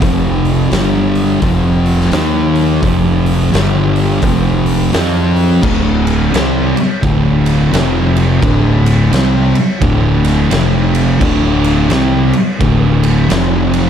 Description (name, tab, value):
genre	stoner and doom metal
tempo	86 BPM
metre	4/4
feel	swing 62% on 8ths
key	D phrygian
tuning	A4 = 440 Hz
part	thick fuzz guitar	riff	0.0-13.9 s	D2 to F4	-15 LUFS	left 7 dB	distortion
part	thick fuzz guitar	riff	0.0-13.9 s	D2 to F4	-15 LUFS	right 8 dB	distortion
part	fuzz fingered electric bass	bass	0.0-13.9 s	D1 to F2	-17 LUFS	equal	overdrive
part	oversized low-tuned drum kit	drums	0.0-13.9 s	crash cymbal, hi-hat, kick drum, ride cymbal, snare drum	-18 LUFS	equal	none
room	light reverb, small room ambience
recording	dark, warm production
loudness	-10 LUFS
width	side -8 dB against mid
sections	0.0-5.6 A section; 5.6-13.9 B section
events	none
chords	0.0 F5; 0.7 G5; 1.4 F5; 2.1 Eb5; 2.8 F5; 3.5 G5; 4.2 F5; 5.6 D5; 7.7 F5; 8.4 D5; 10.5 F5; 11.2 D5; 13.3 F5